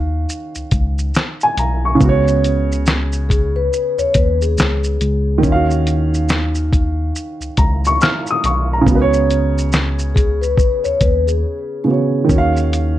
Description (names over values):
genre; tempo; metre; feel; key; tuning
lo-fi hip hop; 70 BPM; 4/4; swing 62% on 16ths; Eb minor; A4 = 440 Hz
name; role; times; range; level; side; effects
dark upright piano; accompaniment; 0.0-13.0 s; Db3 to F6; -18 LUFS; right 2 dB; plate reverb
mellow tine electric piano; bass; 0.0-13.0 s; Cb2 to Eb2; -18 LUFS; equal; none
lo-fi sampler-style drum kit; drums; 0.3-13.0 s; handclaps, hi-hat, kick drum, shaker, snare drum; -17 LUFS; equal; none
vibraphone with soft mallets; second line; 3.3-12.3 s; Ab4 to Db5; -20 LUFS; left 5 dB; tape echo, plate reverb
room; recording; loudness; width
light reverb; dark, warm production; -14 LUFS; side -13 dB against mid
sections
0.0-13.0 A section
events
break 11.4-12.3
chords
0.0 Ebm9; 2.0 Db7sus4; 5.4 Ebm9; 8.9 Db7sus4; 12.3 Ebm9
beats
0.29 1.15 | 2.00 2.86 3.72 4.58 | 5.43 6.29 7.15 8.01 | 8.86 9.72 10.58 11.43 | 12.29